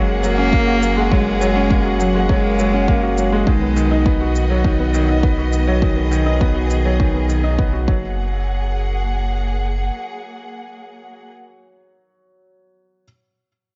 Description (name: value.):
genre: piano and strings electronica.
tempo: 102 BPM.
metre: 4/4.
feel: straight.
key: F# major.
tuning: A4 = 441 Hz.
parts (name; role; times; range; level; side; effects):
warm cello; melody; 0.0-4.6 s; F#3 to A#3; -23 LUFS; equal; none.
rich studio string section; sustained chords; 0.0-11.3 s; A#3 to F#5; -29 LUFS; equal; sidechain pumping.
clear upright piano; riff; 0.0-13.0 s; D#3 to F#4; -23 LUFS; equal; none.
warm sub bass; bass; 0.0-9.9 s; F#1 to B1; -23 LUFS; equal; sidechain pumping.
shaker; drums; 0.2-7.4 s; none; -37 LUFS; equal; none.
electronic kick drum; drums; 0.5-8.0 s; none; -20 LUFS; equal; none.
room: light reverb, small room ambience.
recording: nothing above 7.6 kHz.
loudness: -17 LUFS.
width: mono.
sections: 0.0-8.2 A section; 8.2-10.5 B section.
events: none.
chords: 0.0 F#add9; 3.5 B; 7.9 F#add9.